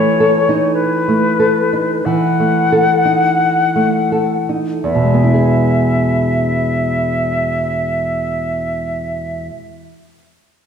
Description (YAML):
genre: romantic duo for flute and classical guitar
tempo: 39-56 BPM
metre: 4/4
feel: rubato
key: E major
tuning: A4 = 440 Hz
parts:
  - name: bright concert flute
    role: melody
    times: 0.0-9.5 s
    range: B4 to F#5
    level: -17 LUFS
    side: left 2 dB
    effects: none
  - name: nylon-string guitar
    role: accompaniment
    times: 0.0-10.0 s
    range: E2 to A4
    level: -15 LUFS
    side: equal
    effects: none
room: wet scoring stage reverb, RT60 1.6 s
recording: recorded in a church or concert hall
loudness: -13 LUFS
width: side -7 dB against mid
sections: 0.0-4.8 A section; 4.8-10.4 B section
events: slowing down 0.0-4.8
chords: 0.0 B7/E; 4.8 E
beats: 0.77 2.05 3.38 | 4.83 6.20 7.58 8.99